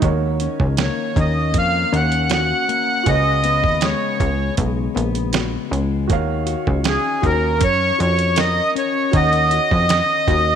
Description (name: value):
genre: indie pop, bedroom pop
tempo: 79 BPM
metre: 4/4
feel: straight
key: Eb minor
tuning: A4 = 438 Hz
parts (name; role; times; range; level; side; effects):
- fingerpicked plugged-in steel-string acoustic guitar; accompaniment; 0.0-10.6 s; Db3 to Bb4; -25 LUFS; left 12 dB; lush chorus, vibrato effect
- warm upright piano; accompaniment; 0.0-10.6 s; Eb4 to Gb5; -29 LUFS; right 11 dB; none
- plucky analog bass; bass; 0.0-10.6 s; Bb1 to Gb2; -20 LUFS; equal; none
- dusty soul sampler-style drum kit; drums; 0.0-10.5 s; hi-hat, kick drum, snare drum; -22 LUFS; right 3 dB; none
- accordion; melody; 0.8-10.6 s; Ab4 to Gb5; -18 LUFS; right 1 dB; analog chorus, slapback echo
room: light reverb, small room reverb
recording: 1960s-style stereo with parts hard left and right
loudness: -16 LUFS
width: side -8 dB against mid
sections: 0.0-10.6 A section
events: none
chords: 0.0 Ebm7; 3.1 Db7sus4; 6.1 Ebm7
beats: | 0.02 0.78 1.54 2.30 | 3.06 3.82 4.58 5.34 | 6.10 6.86 7.62 8.38 | 9.14 9.90